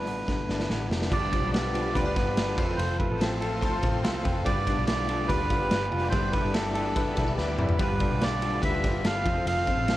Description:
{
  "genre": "jangly indie pop",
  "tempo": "144 BPM",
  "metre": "4/4",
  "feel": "straight",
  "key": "unclear",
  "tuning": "A4 = 440 Hz",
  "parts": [
    { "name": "melodica", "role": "melody", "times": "0.0-10.0 s", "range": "A4 to F5", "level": "-30 LUFS", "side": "right 2 dB", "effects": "plate reverb" },
    { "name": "direct-recorded clean electric guitar", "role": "arpeggios", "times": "0.0-10.0 s", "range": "G2 to B4", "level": "-32 LUFS", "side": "left 3 dB", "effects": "tremolo" },
    { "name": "vintage muted picked electric bass", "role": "bass", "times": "0.0-10.0 s", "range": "F1 to D2", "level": "-32 LUFS", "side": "equal", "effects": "none" },
    { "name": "raw garage drum kit", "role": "drums", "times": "0.1-10.0 s", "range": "crash cymbal, hi-hat, kick drum, ride cymbal, snare drum, toms", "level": "-29 LUFS", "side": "equal", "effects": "none" },
    { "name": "crunchy overdriven guitar", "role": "accompaniment", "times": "1.1-10.0 s", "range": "G2 to A4", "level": "-36 LUFS", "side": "right 2 dB", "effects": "none" },
    { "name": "warm analog keys", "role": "accompaniment", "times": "1.1-10.0 s", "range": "C4 to D5", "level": "-36 LUFS", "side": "left 2 dB", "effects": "chorus" },
    { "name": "string machine, violins", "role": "sustained chords", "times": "1.1-10.0 s", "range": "F4 to C6", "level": "-39 LUFS", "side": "equal", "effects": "none" }
  ],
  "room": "light reverb",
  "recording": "worn, warbling old tape, cassette tape, warbly pitch drift",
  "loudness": "-24 LUFS",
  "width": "side -15 dB against mid",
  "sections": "0.0-1.1 A section; 1.1-10.0 B section",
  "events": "drum fill 0.3-1.1, 7.4-7.8",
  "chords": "0.0 G7; 2.6 F; 4.5 G7; 6.1 Em7/G; 7.8 G7; 9.3 F"
}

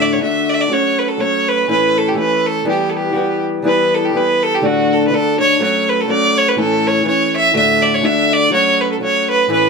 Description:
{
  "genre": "celtic folk, Celtic polka",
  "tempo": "123 BPM",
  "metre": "2/4",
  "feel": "swing 56% on 8ths",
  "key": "unclear",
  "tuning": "A4 = 440 Hz",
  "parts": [
    { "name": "clear fiddle", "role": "melody", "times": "0.0-9.7 s", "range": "F#4 to E5", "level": "-14 LUFS", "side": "right 2 dB", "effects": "none" },
    { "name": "fingerpicked steel-string acoustic guitar", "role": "accompaniment", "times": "0.0-9.7 s", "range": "D2 to F#4", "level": "-17 LUFS", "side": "left 2 dB", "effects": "none" }
  ],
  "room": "moderate studio reverb, RT60 0.7 s",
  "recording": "none",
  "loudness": "-12 LUFS",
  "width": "side -4 dB against mid",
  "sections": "0.0-3.6 A section; 3.6-9.7 A section",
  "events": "none",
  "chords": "0.0 D; 0.7 F#m; 1.7 A; 2.7 Em; 4.6 D; 5.6 F#m; 6.6 A; 7.5 D; 8.5 F#m"
}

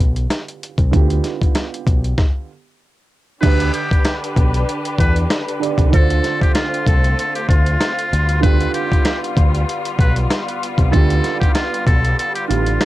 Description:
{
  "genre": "hip hop, boom-bap hip-hop",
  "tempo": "96 BPM",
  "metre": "4/4",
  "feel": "swing 55% on 16ths",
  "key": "unclear",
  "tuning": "A4 = 442 Hz",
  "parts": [
    { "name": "dark upright piano", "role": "accompaniment", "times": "0.0-12.8 s", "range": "D3 to D5", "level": "-25 LUFS", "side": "right 9 dB", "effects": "high-pass filter, low-pass filter" },
    { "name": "deep dub fingered electric bass", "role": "bass", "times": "0.0-12.8 s", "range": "A1 to E2", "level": "-17 LUFS", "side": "equal", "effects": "none" },
    { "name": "dusty soul sampler-style drum kit", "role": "drums", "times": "0.0-12.8 s", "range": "crash cymbal, hi-hat, kick drum, snare drum", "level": "-16 LUFS", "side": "equal", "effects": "cassette tape" },
    { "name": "trumpet with metal mute", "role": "melody", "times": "3.4-12.8 s", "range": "F4 to B4", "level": "-23 LUFS", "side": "equal", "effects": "high-pass filter, low-pass filter, cassette tape, analog delay" },
    { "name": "bright studio string section", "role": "sustained chords", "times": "3.4-12.8 s", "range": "D3 to B4", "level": "-25 LUFS", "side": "left 2 dB", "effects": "high-pass filter, low-pass filter" }
  ],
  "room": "little or no reverb",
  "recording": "home recording on cassette",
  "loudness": "-14 LUFS",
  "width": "side -16 dB against mid",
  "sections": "0.0-3.4 A section; 3.4-12.8 B section",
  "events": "stop 2.2-3.4; break 12.2-12.8",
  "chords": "0.0 G7; 3.4 Em7 (rootless); 5.9 Dm7; 8.1 G7"
}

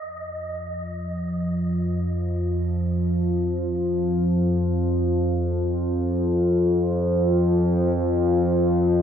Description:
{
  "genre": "ambient",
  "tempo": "free time",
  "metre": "none",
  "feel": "none",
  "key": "unclear",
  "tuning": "A4 = 440 Hz",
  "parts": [
    { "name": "analog drone", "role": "drone", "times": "0.5-9.0 s", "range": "F2 to F3", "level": "-20 LUFS", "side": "equal", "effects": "chorus" }
  ],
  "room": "moderate huge ambient reverb, RT60 8.2 s",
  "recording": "none",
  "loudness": "-21 LUFS",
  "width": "side -8 dB against mid",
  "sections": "0.0-9.0 A section",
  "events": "none",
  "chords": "none"
}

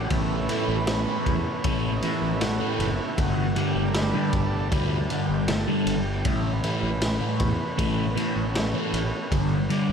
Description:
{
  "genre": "psychedelic rock",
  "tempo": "78 BPM",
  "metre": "4/4",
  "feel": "straight",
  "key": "A mixolydian",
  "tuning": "A4 = 440 Hz",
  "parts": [
    { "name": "overdriven combo organ", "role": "sustained chords", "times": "0.0-9.9 s", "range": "G3 to D5", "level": "-30 LUFS", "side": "right 3 dB", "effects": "none" },
    { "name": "fuzz fingered electric bass", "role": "bass", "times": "0.0-9.9 s", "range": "F#1 to E2", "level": "-29 LUFS", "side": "equal", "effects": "overdrive" },
    { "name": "fuzz guitar", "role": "riff", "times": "0.1-9.9 s", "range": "G2 to A3", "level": "-26 LUFS", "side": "left 1 dB", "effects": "distortion, phaser" },
    { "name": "raw garage drum kit", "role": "drums", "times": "0.1-9.9 s", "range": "kick drum, ride cymbal, snare drum", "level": "-28 LUFS", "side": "equal", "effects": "none" }
  ],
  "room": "moderate cathedral reverb, RT60 6.0 s",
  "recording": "dreamy mix soaked in reverb",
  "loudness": "-22 LUFS",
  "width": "side -7 dB against mid",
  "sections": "0.0-9.9 A section",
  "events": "transistor combo organ solo 0.0-9.9",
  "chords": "0.1 Aadd9; 3.2 Gsus2; 6.2 Aadd9; 9.3 G5"
}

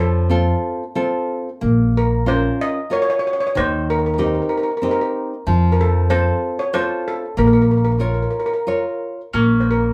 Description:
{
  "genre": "italian folk, Italian serenade",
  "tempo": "93 BPM",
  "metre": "3/4",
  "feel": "rubato",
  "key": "Bb harmonic minor",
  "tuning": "A4 = 439 Hz",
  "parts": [
    { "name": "steel pan", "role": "melody", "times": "0.0-9.9 s", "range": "A4 to Eb5", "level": "-24 LUFS", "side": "equal", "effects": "none" },
    { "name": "nylon-string guitar", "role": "accompaniment", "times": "0.0-9.9 s", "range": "Eb3 to Db5", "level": "-23 LUFS", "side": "equal", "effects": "none" },
    { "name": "upright bass", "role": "bass", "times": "0.0-9.9 s", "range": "Bb1 to F2", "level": "-21 LUFS", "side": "equal", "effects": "none" },
    { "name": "bowl-back mandolin", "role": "second line", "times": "9.3-9.9 s", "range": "Db4", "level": "-26 LUFS", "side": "equal", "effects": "none" }
  ],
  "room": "wet studio ambience, RT60 0.5 s",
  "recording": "heard from further back in the room",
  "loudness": "-19 LUFS",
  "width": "mono",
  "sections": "0.0-9.3 A section",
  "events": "none",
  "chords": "0.0 F; 1.6 Bbm; 3.6 Eb6; 5.5 F; 7.4 Bbm"
}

